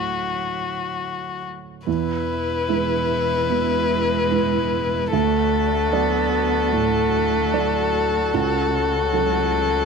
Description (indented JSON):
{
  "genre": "neoclassical piano and strings",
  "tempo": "74 BPM",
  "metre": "4/4",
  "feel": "rubato",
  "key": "unclear",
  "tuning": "A4 = 440 Hz",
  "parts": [
    { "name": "rich violin", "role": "melody", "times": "0.0-9.8 s", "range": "F#4 to B4", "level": "-22 LUFS", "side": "left 8 dB", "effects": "none" },
    { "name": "rich cello", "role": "second line", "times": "0.0-9.8 s", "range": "E3 to B3", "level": "-27 LUFS", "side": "right 13 dB", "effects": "none" },
    { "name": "felt-muted upright piano", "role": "accompaniment", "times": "0.0-9.8 s", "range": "C#2 to D5", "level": "-25 LUFS", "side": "right 10 dB", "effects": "none" },
    { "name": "clear viola", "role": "accompaniment", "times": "1.9-9.8 s", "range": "E4 to F#4", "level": "-30 LUFS", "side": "right 12 dB", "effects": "none" },
    { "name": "rich chamber string section", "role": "sustained chords", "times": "1.9-9.8 s", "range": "A3 to E5", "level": "-35 LUFS", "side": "left 3 dB", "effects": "none" },
    { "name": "rich double bass", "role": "bass", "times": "1.9-9.8 s", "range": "E1 to D2", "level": "-29 LUFS", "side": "left 1 dB", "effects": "none" }
  ],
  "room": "light reverb, studio reverb",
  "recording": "1960s-style stereo with parts hard left and right",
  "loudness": "-19 LUFS",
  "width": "side -5 dB against mid",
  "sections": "0.0-1.9 A section; 1.9-9.8 B section",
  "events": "none",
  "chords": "0.0 D; 1.9 E; 5.1 D; 8.3 F#m/C#"
}